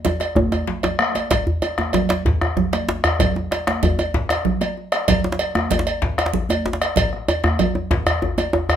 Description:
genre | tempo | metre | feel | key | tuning
west african traditional, West African drum ensemble | 127 BPM (dotted quarters) | 12/8 | straight | none | none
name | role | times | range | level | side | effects
congas | percussion | 0.0-8.5 s | none | -24 LUFS | right 6 dB | none
cowbell | percussion | 0.0-8.8 s | none | -24 LUFS | right 2 dB | none
djembe | percussion | 0.0-8.7 s | none | -28 LUFS | left 4 dB | none
djembe | percussion | 0.1-8.8 s | none | -22 LUFS | equal | none
bombo | percussion | 0.2-8.8 s | none | -23 LUFS | left 2 dB | none
room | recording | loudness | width
moderate studio reverb, RT60 0.6 s | none | -18 LUFS | side -9 dB against mid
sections
0.0-1.3 A section; 1.3-8.8 B section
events
drum fill 0.0-1.3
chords
none

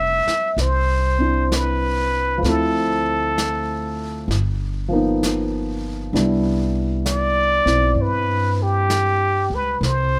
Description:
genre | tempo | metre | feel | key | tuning
jazz ballad | 65 BPM | 4/4 | swing 67% on 8ths | C major | A4 = 440 Hz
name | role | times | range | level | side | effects
trumpet with plunger mute | melody | 0.0-10.2 s | G4 to E5 | -22 LUFS | equal | none
warm concert grand piano | accompaniment | 0.0-10.2 s | F3 to E4 | -26 LUFS | equal | none
upright bass | bass | 0.0-10.2 s | F1 to G2 | -25 LUFS | equal | none
vintage brush drum kit | drums | 0.3-10.2 s | brushed snare drum, hi-hat, snare drum | -32 LUFS | equal | none
room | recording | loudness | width
little or no reverb | none | -20 LUFS | mono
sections
0.0-10.2 A section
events
none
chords
0.0 F6; 2.4 Dm9; 4.3 G7alt; 6.1 Cmaj9

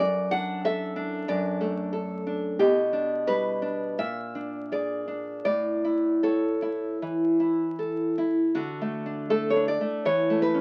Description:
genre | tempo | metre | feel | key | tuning
romantic piece for solo classical guitar | 76-94 BPM | 4/4 | rubato | D major | A4 = 440 Hz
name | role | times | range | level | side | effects
nylon-string guitar | solo | 0.0-10.6 s | F#2 to F#5 | -27 LUFS | equal | none
room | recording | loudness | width
moderate studio ambience, RT60 0.5 s | very old 78 rpm record, vinyl crackle | -27 LUFS | mono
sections
0.0-8.6 A section; 8.6-10.6 B section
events
none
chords
0.0 D/F#; 2.6 G/B; 4.0 Bb7; 5.5 A; 8.6 D; 10.1 A/E

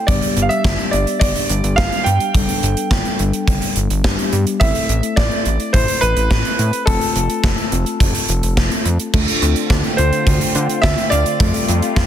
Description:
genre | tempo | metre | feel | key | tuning
synth-pop | 106 BPM | 4/4 | straight | G mixolydian | A4 = 439 Hz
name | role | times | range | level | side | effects
muted felt-like synth keys | accompaniment | 0.0-12.1 s | G3 to A4 | -23 LUFS | left 4 dB | chorus
clear concert grand piano | melody | 0.1-12.1 s | A4 to G5 | -21 LUFS | right 1 dB | none
fat analog bass | bass | 0.1-12.1 s | F1 to D3 | -18 LUFS | equal | none
gated 80s drum kit | drums | 0.1-12.1 s | crash cymbal, hi-hat, kick drum, snare drum | -18 LUFS | equal | none
phased analog pad | sustained chords | 9.1-12.1 s | D3 to F4 | -24 LUFS | right 1 dB | phaser, chorus
analog pluck | arpeggios | 9.1-12.1 s | A3 to F5 | -28 LUFS | right 6 dB | chorus, ping-pong delay
room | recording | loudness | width
light reverb, studio ambience | dense, heavily limited modern master | -14 LUFS | side -10 dB against mid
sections
0.0-9.1 A section; 9.1-12.1 B section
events
none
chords
0.1 G; 4.6 Am; 6.9 F; 9.1 Dm7; 11.4 Fadd9

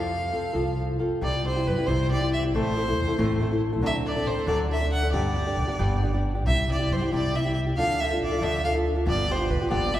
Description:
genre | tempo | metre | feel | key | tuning
mexican folk, mariachi | 92 BPM (dotted quarters) | 6/8 | rubato | C major | A4 = 440 Hz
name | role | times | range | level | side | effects
clear violin | melody | 0.0-10.0 s | B4 to F#5 | -28 LUFS | right 1 dB | none
nylon-string guitar | accompaniment | 0.0-10.0 s | G2 to A4 | -27 LUFS | left 1 dB | none
upright bass | bass | 0.0-10.0 s | G1 to G2 | -27 LUFS | equal | none
room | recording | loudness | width
wet church reverb, RT60 3.6 s | recorded in a church or concert hall | -23 LUFS | side -12 dB against mid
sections
0.0-1.2 A section; 1.2-10.0 B section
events
none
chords
0.0 F; 1.2 C; 2.5 Am; 3.8 D7; 5.1 G; 6.5 C; 7.8 Dm; 9.1 G7

